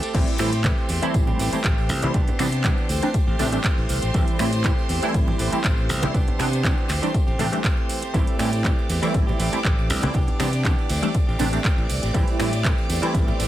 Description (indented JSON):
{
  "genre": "filtered disco house",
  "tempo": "120 BPM",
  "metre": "4/4",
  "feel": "straight",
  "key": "A minor",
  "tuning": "A4 = 442 Hz",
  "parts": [
    { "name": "string machine, full ensemble", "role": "sustained chords", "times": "0.0-13.5 s", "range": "A4 to D6", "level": "-32 LUFS", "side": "left 1 dB", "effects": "ensemble chorus, vintage 12-bit sampler grit, sidechain pumping, low-pass filter" },
    { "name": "direct-recorded clean electric guitar", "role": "riff", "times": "0.0-13.5 s", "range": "E3 to G4", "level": "-30 LUFS", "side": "right 2 dB", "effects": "vintage 12-bit sampler grit, sidechain pumping, low-pass filter" },
    { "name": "house drum kit", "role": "drums", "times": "0.0-13.5 s", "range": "crash cymbal, finger snaps, handclaps, hi-hat, ride cymbal", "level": "-29 LUFS", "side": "right 1 dB", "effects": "sidechain pumping on hats, sidechain pumping on cymbals" },
    { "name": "tambourine and congas", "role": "percussion", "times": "0.0-13.5 s", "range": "none", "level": "-32 LUFS", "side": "right 2 dB", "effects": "sidechain pumping on perc, low-pass filter on perc" },
    { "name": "funky polysynth comp", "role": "accompaniment", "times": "0.1-13.5 s", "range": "E3 to E4", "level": "-26 LUFS", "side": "right 1 dB", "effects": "chorus, phaser, sidechain pumping, low-pass filter" },
    { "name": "modern bright fingered electric bass", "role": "bass", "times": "0.1-13.5 s", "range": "A1 to C3", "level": "-25 LUFS", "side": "equal", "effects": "sidechain pumping, low-pass filter" },
    { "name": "electronic kick drum", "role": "drums", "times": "0.1-13.3 s", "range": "none", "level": "-22 LUFS", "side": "equal", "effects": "none" }
  ],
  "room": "little or no reverb",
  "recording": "none",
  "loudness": "-19 LUFS",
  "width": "side -13 dB against mid",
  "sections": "0.1-13.5 A section",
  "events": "drop 0.1-13.5",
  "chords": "0.1 Am7; 2.1 Cmaj9; 2.9 D9sus4; 4.1 Am7; 6.1 Cmaj9; 6.9 Am7; 10.1 Cmaj9; 10.9 Am7"
}